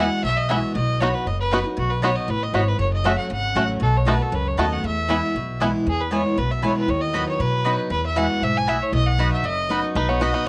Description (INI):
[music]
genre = bluegrass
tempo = 235 BPM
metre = 4/4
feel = straight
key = E major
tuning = A4 = 437 Hz
[part]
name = bluegrass banjo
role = melody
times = 0.0-5.7, 10.0-10.5 s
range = A3 to F#4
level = -26 LUFS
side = equal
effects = cassette tape
[part]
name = clear fiddle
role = melody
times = 0.0-10.5 s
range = F#4 to G#5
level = -27 LUFS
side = equal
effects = cassette tape
[part]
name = picked steel-string acoustic guitar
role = accompaniment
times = 0.0-10.5 s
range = E2 to B4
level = -28 LUFS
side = equal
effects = cassette tape
[part]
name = mandolin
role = stabs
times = 0.0-10.3 s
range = A3 to B5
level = -29 LUFS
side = equal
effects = cassette tape
[part]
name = upright bass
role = bass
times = 0.0-10.3 s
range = F#1 to B2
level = -27 LUFS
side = equal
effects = none
[sound]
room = light reverb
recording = home recording on cassette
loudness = -22 LUFS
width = mono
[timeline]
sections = 0.0-5.9 A section; 5.9-10.5 A section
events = none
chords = 0.0 Eadd9; 0.8 B; 2.8 F#m; 3.8 B7; 4.8 E; 6.9 B/D#; 7.9 Eadd9; 8.9 B